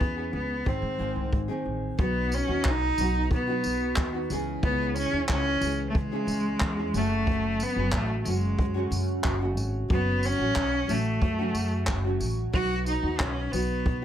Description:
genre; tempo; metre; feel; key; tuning
acoustic pop; 91 BPM; 4/4; straight; unclear; A4 = 442 Hz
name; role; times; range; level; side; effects
rich cello; melody; 0.0-14.0 s; G#3 to F#4; -28 LUFS; left 1 dB; plate reverb
nylon-string guitar; accompaniment; 0.0-14.0 s; F#2 to G#4; -32 LUFS; right 1 dB; double-tracked left and right, plate reverb
upright bass; bass; 0.0-14.0 s; F#1 to C#3; -30 LUFS; equal; none
jazz brush drum kit; drums; 0.0-14.0 s; handclaps, kick drum, tambourine; -29 LUFS; equal; none
room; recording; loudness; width
light reverb; none; -24 LUFS; side -10 dB against mid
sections
0.0-2.0 A section; 2.0-14.0 B section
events
none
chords
0.0 C#m; 0.7 G#; 2.0 B; 4.3 C#m; 6.9 F#m; 12.5 B

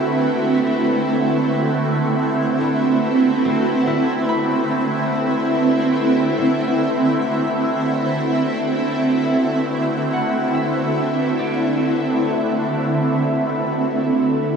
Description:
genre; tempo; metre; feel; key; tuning
ambient; 72 BPM; 4/4; straight; D mixolydian; A4 = 440 Hz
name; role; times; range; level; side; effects
shimmering ambient pad; sustained chords; 0.0-14.6 s; D3 to B4; -17 LUFS; right 1 dB; chorus, built-in reverb, phaser, shimmer reverb
concert harp; arpeggios; 2.6-13.9 s; A3 to B5; -30 LUFS; left 2 dB; tape echo, shimmer reverb
overtone-sweeping drone; drone; 14.1-14.6 s; D3 to A3; -26 LUFS; left 1 dB; chorus, built-in reverb
room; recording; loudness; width
wet huge ambient reverb, RT60 7.7 s; in a vast, echoing space, cassette tape, studio ambience; -17 LUFS; side -6 dB against mid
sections
0.0-14.0 A section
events
fade-out on harp 0.0-14.0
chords
0.0 D13; 14.0 D9

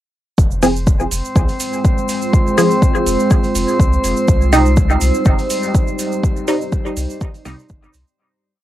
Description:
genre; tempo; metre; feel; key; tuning
dub techno; 123 BPM; 4/4; swing 54% on 16ths; F dorian; A4 = 438 Hz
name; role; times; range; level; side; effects
deep dark ambient pad; sustained chords; 1.6-8.2 s; G3 to D5; -22 LUFS; right 1 dB; chorus, built-in reverb, sidechain pumping
pure sine sub bass; bass; 0.4-8.0 s; F1 to C2; -18 LUFS; equal; sidechain pumping
electronic kick drum; drums; 0.4-7.8 s; none; -14 LUFS; equal; overdrive, cassette tape
cabasa; percussion; 0.4-8.2 s; none; -27 LUFS; right 8 dB; none
drifting glass-harmonics texture; texture; 1.2-8.2 s; C4 to C5; -22 LUFS; equal; chorus, built-in reverb, sidechain pumping
filtered dub chord stab; stabs; 0.6-7.6 s; C3 to Ab4; -17 LUFS; equal; phaser, sidechain pumping, dub echo
electronic hi-hat; drums; 0.6-8.0 s; none; -30 LUFS; equal; overdrive, cassette tape
room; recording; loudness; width
moderate booth ambience, RT60 0.2 s; home recording on cassette; -13 LUFS; side -13 dB against mid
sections
0.4-8.2 groove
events
fade-out 5.6-8.2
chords
0.4 Fm; 4.3 Cm

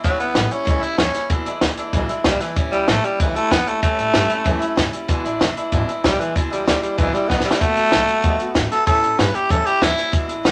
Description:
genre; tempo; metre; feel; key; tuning
rockabilly; 190 BPM; 4/4; straight; unclear; A4 = 440 Hz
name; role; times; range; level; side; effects
raspy tenor saxophone; melody; 0.0-10.1 s; E3 to B4; -22 LUFS; equal; none
picked swing-style acoustic guitar; accompaniment; 0.0-10.5 s; E2 to F#4; -28 LUFS; equal; none
upright bass; bass; 0.0-10.5 s; E1 to A2; -28 LUFS; equal; none
compact cocktail drum kit; drums; 0.0-10.5 s; hi-hat, kick drum, snare drum; -22 LUFS; equal; none
room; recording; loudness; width
moderate studio ambience, RT60 0.5 s; none; -19 LUFS; mono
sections
0.0-10.5 A section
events
drum fill 7.3-7.6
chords
0.0 A7; 1.3 E7; 2.6 A7; 5.1 E7; 7.6 B7; 8.9 A7

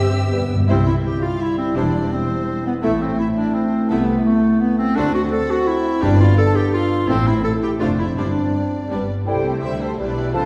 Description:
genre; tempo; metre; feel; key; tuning
quick classical-period movement for symphony orchestra; 168 BPM; 3/4; straight; C major; A4 = 441 Hz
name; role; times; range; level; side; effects
rich studio violin section; melody; 0.0-10.5 s; A4 to E6; -35 LUFS; equal; none
rich studio violin section; second line; 0.0-10.4 s; C4 to E5; -35 LUFS; equal; none
rich studio viola section; accompaniment; 0.0-10.5 s; E3 to G4; -30 LUFS; equal; none
rich studio double bass section; bass; 0.0-10.5 s; E1 to G2; -25 LUFS; equal; none
warm studio cello section; bass; 0.0-10.5 s; E2 to G4; -30 LUFS; equal; none
timpani; percussion; 0.0-0.6, 6.0-6.5, 10.4-10.5 s; G2 to C3; -26 LUFS; equal; none
mellow French horn section; sustained chords; 0.3-10.5 s; G3 to B4; -25 LUFS; equal; none
clear clarinet; second line; 0.7-10.5 s; A3 to A4; -24 LUFS; equal; none
bright flute section; second line; 9.3-10.5 s; G5 to A5; -33 LUFS; equal; none
mellow bassoon; accompaniment; 9.3-10.5 s; F3 to G3; -32 LUFS; equal; none
warm trumpet section; stabs; 9.3-10.4 s; G4 to C5; -30 LUFS; equal; none
room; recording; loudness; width
wet scoring stage reverb, RT60 1.9 s; heard from further back in the room; -19 LUFS; mono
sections
0.7-9.3 A section; 9.3-10.5 B section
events
timpani fill 0.3-0.7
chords
0.3 G; 0.7 C; 1.8 C/E; 2.8 Am; 3.9 Am/C; 5.0 D7; 6.0 G7; 7.1 Am; 7.8 Dm7/F; 8.2 Gsus4; 8.9 G; 9.3 C

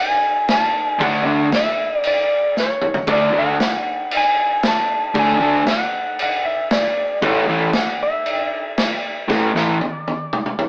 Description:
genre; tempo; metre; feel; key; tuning
garage rock duo or trio; 116 BPM; 4/4; straight; unclear; A4 = 440 Hz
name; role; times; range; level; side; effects
electric slide guitar; melody; 0.0-10.7 s; C#5 to A5; -22 LUFS; equal; none
vintage drum kit; drums; 0.5-10.7 s; crash cymbal, kick drum, snare drum, toms; -24 LUFS; equal; none
fuzz guitar; riff; 1.0-9.8 s; A2 to D4; -21 LUFS; equal; distortion
room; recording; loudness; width
moderate stone room reverb, RT60 1.0 s; rough rehearsal-room recording, warm saturation, AM radio sound; -19 LUFS; mono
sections
0.0-10.7 A section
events
drum fill 2.6-3.1, 9.3-10.7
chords
0.0 D; 7.2 A5

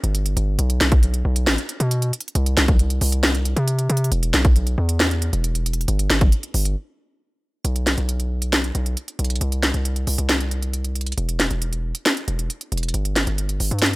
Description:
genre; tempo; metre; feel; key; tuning
hip hop, trap; 136 BPM; 4/4; half-time; unclear; A4 = 439 Hz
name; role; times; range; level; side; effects
distorted 808-style bass; bass; 0.0-14.0 s; E1 to C3; -21 LUFS; equal; distortion
trap drum kit; drums; 0.0-14.0 s; handclaps, hi-hat, kick drum, snare drum; -20 LUFS; equal; none
room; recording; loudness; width
little or no reverb; none; -18 LUFS; side -21 dB against mid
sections
0.0-7.6 A section; 7.6-14.0 B section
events
break 6.8-7.6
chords
none

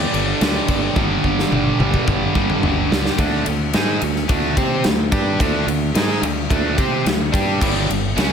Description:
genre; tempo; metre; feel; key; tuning
hard rock; 108 BPM; 4/4; straight; unclear; A4 = 440 Hz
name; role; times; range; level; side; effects
lightly driven lead guitar; melody; 0.0-2.6 s; D5; -34 LUFS; left 1 dB; none
crunchy overdriven guitar; riff; 0.0-8.3 s; G2 to C5; -23 LUFS; right 9 dB; slapback echo
distorted electric guitar; riff; 0.0-3.2, 7.6-8.3 s; G2 to D4; -26 LUFS; right 2 dB; distortion, slapback echo
tight distorted guitar; riff; 0.0-8.3 s; G2 to C5; -24 LUFS; left 9 dB; distortion, slapback echo
modern bright fingered electric bass; bass; 0.0-8.3 s; G1 to C3; -23 LUFS; equal; none
big rock drum kit; drums; 0.1-8.3 s; crash cymbal, kick drum, ride cymbal, snare drum, toms; -20 LUFS; left 1 dB; none
room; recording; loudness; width
moderate recital hall reverb, RT60 1.6 s, small room ambience; big arena sound; -16 LUFS; side -7 dB against mid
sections
0.0-3.2 A section; 3.2-8.3 B section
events
drum fill 1.0-3.2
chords
0.0 G5; 3.2 D5; 7.6 G5

